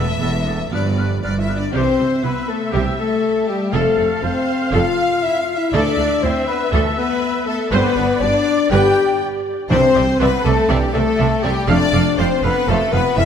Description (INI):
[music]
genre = cinematic, heroic adventure film score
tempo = 121 BPM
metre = 4/4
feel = straight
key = C major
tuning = A4 = 440 Hz
[part]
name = rich chamber violin section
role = melody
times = 0.0-13.3 s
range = G4 to G5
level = -28 LUFS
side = left 5 dB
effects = none
[part]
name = flute section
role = second line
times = 0.0-13.3 s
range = G4 to F6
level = -27 LUFS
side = left 2 dB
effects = none
[part]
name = rich symphonic violin section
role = second line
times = 0.0-13.3 s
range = G4 to G5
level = -27 LUFS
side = left 4 dB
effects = none
[part]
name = warm clarinet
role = second line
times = 0.0-13.3 s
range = B3 to G5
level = -26 LUFS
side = equal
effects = none
[part]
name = warm oboe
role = second line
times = 0.0-1.6 s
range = A4 to B4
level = -33 LUFS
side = right 2 dB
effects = none
[part]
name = rich symphonic viola section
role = accompaniment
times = 0.0-13.3 s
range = B3 to F5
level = -25 LUFS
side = right 1 dB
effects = none
[part]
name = dark French horn section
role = sustained chords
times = 0.0-13.3 s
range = G3 to B4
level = -20 LUFS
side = left 5 dB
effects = none
[part]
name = mellow trombone section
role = sustained chords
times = 0.0-12.9 s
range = D3 to D4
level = -31 LUFS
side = right 3 dB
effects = none
[part]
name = clear symphonic double bass section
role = bass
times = 0.0-13.3 s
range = E1 to D2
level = -23 LUFS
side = right 3 dB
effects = none
[part]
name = rich symphonic cello section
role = bass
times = 0.0-13.3 s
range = D2 to C3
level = -23 LUFS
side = right 3 dB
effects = none
[part]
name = timpani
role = percussion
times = 9.7-10.4 s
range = C3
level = -24 LUFS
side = equal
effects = none
[sound]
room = wet scoring stage reverb, RT60 2.1 s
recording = none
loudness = -15 LUFS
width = side -8 dB against mid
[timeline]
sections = 0.0-1.7 A section; 1.7-13.3 B section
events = none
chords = 0.0 Esus4; 0.7 G7; 1.7 C; 3.7 F; 5.7 Dsus2; 7.7 Gsus4; 8.7 G; 9.7 Cadd9; 11.7 F